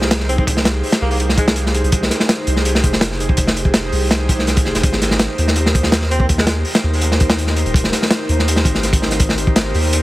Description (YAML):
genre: drum and bass, jungle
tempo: 165 BPM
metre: 4/4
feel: straight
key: F minor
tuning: A4 = 441 Hz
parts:
  - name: airy breathy pad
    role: sustained chords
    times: 0.0-10.0 s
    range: Eb4 to C5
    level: -22 LUFS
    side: equal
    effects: chorus
  - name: soft dub sub bass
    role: bass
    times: 0.0-10.0 s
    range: Eb1 to Eb2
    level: -19 LUFS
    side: equal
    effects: none
  - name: crunchy breakbeat drum kit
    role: drums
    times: 0.0-10.0 s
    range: hi-hat, kick drum, snare drum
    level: -16 LUFS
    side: equal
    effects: none
  - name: warm tenor saxophone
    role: melody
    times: 0.3-1.5, 6.1-6.5 s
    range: Ab3 to C4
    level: -26 LUFS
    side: equal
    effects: vintage 12-bit sampler grit, dub echo
room: light reverb, small room ambience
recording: heavily compressed radio sound, multiband compression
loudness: -14 LUFS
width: side -17 dB against mid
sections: 0.0-10.0 A section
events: none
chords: 0.0 Fm7; 4.8 Abmaj7